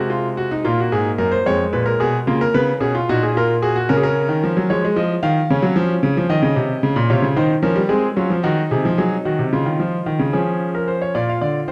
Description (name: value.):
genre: classical, baroque-style 3-part fugue for grand piano.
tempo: 74 BPM (dotted quarters).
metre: 12/8.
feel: straight.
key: unclear.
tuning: A4 = 440 Hz.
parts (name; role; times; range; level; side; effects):
clear concert grand piano; solo; 0.0-11.7 s; E#2 to E#5; -18 LUFS; equal; none.
room: wet recital hall reverb, RT60 1.8 s.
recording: dark, warm production.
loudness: -18 LUFS.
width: mono.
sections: 0.0-11.2 A section.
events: none.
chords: 0.0 G#7/B#; 1.5 C#7/E#; 3.1 F#/A#; 4.7 C#; 6.3 D#7(no3); 7.9 G#7; 9.5 C#; 11.2 A#.